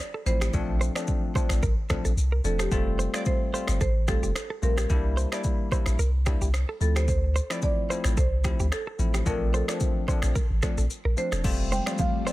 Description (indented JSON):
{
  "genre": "afrobeats",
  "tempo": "110 BPM",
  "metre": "4/4",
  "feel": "swing 55% on 16ths",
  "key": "F major",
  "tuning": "A4 = 440 Hz",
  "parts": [
    { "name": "marimba with medium mallets", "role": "melody", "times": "0.0-12.3 s", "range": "G4 to G5", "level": "-33 LUFS", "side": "right 2 dB", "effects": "ping-pong delay" },
    { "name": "afro-pop drum kit", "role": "drums", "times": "0.0-12.3 s", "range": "crash cymbal, finger snaps, kick drum, rim click, shaker", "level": "-28 LUFS", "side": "equal", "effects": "overdrive" },
    { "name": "direct-recorded clean electric guitar", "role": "riff", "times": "0.1-12.3 s", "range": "G4 to D5", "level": "-35 LUFS", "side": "right 4 dB", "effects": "ping-pong delay" },
    { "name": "barky tine electric piano", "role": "accompaniment", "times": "0.3-12.3 s", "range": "F3 to F4", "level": "-32 LUFS", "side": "left 4 dB", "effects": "analog chorus" },
    { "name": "punchy sub bass", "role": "bass", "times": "0.3-11.8 s", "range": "E1 to D2", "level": "-25 LUFS", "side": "equal", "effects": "none" },
    { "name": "airy breathy pad", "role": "sustained chords", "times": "11.8-12.3 s", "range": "F3 to G4", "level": "-35 LUFS", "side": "left 2 dB", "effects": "chorus" },
    { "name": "congas", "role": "percussion", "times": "11.7-12.1 s", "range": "none", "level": "-35 LUFS", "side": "right 3 dB", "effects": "none" }
  ],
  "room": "digital ambience",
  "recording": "none",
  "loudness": "-23 LUFS",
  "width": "side -17 dB against mid",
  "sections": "0.0-11.4 A section",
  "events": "none",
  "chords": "0.0 Dm7; 0.5 Bbmaj7; 2.7 Fadd9; 4.9 C7; 6.8 Dm7; 9.3 Bbmaj7; 11.4 Fadd9",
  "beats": "| 0.54 1.08 1.63 2.17 | 2.72 3.26 3.81 4.35 | 4.90 5.44 5.99 6.54 | 7.08 7.63 8.17 8.72 | 9.26 9.81 10.35 10.90 | 11.44 11.99"
}